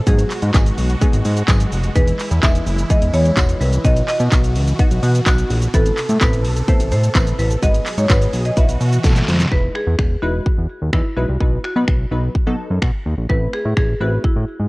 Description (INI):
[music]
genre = dance-pop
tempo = 127 BPM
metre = 4/4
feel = straight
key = E major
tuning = A4 = 439 Hz
[part]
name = marimba with hard mallets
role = melody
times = 0.0-14.7 s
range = E4 to E5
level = -24 LUFS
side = equal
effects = digital delay
[part]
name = supersaw chords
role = sustained chords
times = 0.0-9.5 s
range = B2 to A4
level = -28 LUFS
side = right 1 dB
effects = phaser, sidechain pumping
[part]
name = wavetable chord stab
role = accompaniment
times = 0.1-14.4 s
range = E3 to B4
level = -26 LUFS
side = left 1 dB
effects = sidechain pumping
[part]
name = fat analog bass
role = bass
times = 0.1-14.7 s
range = E1 to B2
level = -18 LUFS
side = equal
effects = sidechain pumping
[part]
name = pop drum kit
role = drums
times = 0.1-14.3 s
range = finger snaps, handclaps, hi-hat, kick drum, shaker, snare drum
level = -17 LUFS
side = equal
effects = none
[part]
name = tambourine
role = percussion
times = 0.5-9.2 s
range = none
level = -37 LUFS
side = right 4 dB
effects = none
[sound]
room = little or no reverb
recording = worn, warbling old tape, cassette tape, warbly pitch drift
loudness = -14 LUFS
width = side -23 dB against mid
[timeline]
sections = 0.0-9.5 A section; 9.5-14.7 B section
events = drum fill 9.0-9.5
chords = 0.1 G#m7; 2.0 Emaj7; 3.8 B; 5.7 Amadd9; 7.6 G#m7; 8.6 Bsus4; 9.5 Emaj7; 11.4 B; 13.3 Amadd9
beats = | 0.07 0.54 1.01 1.48 | 1.96 2.43 2.90 3.37 | 3.85 4.32 4.79 5.26 | 5.74 6.21 6.68 7.15 | 7.62 8.10 8.57 9.04 | 9.52 9.99 10.46 10.93 | 11.40 11.88 12.35 12.82 | 13.29 13.77 14.24